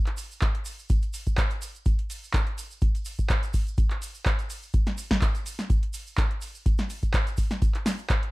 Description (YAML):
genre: house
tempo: 125 BPM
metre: 4/4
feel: swing 54% on 16ths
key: none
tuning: none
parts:
  - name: electro analog drum machine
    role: drums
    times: 0.1-8.3 s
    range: handclaps, hi-hat, snare drum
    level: -31 LUFS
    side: right 1 dB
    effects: none
  - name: tube shaker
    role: percussion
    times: 0.2-8.2 s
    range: none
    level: -44 LUFS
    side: right 4 dB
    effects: none
  - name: electronic kick drum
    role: drums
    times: 0.4-8.2 s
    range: none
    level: -24 LUFS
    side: equal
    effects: none
room: little or no reverb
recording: dark, warm production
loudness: -24 LUFS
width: side -21 dB against mid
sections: 0.0-8.3 A section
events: none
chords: none